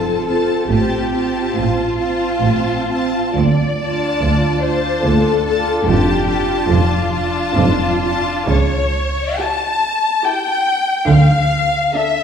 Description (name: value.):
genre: classical, slow romantic movement for string orchestra.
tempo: 61-74 BPM.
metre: 3/4.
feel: rubato.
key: unclear.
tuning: A4 = 438 Hz.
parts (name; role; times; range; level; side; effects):
rich symphonic violin section; melody; 0.0-12.2 s; A5; -26 LUFS; left 3 dB; none.
warm symphonic violin section; second line; 0.0-12.2 s; F4 to A5; -19 LUFS; left 3 dB; none.
rich symphonic viola section; accompaniment; 0.0-12.2 s; C4 to A4; -21 LUFS; right 3 dB; none.
clear symphonic double bass section; bass; 0.0-11.8 s; F1 to D2; -21 LUFS; right 2 dB; none.
rich symphonic cello section; bass; 0.0-11.8 s; D2 to D3; -19 LUFS; right 1 dB; none.
room: wet scoring stage reverb, RT60 1.8 s.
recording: heard from further back in the room.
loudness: -14 LUFS.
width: side -7 dB against mid.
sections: 0.0-12.2 A section.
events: none.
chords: 0.0 F; 0.7 F/A; 3.4 Dm; 5.9 Dm/F; 8.5 A7/C#; 11.1 Dm.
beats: | 0.70 1.57 2.43 | 3.37 4.23 5.06 | 5.87 6.70 7.57 | 8.49 9.41 10.25 | 11.09 11.95.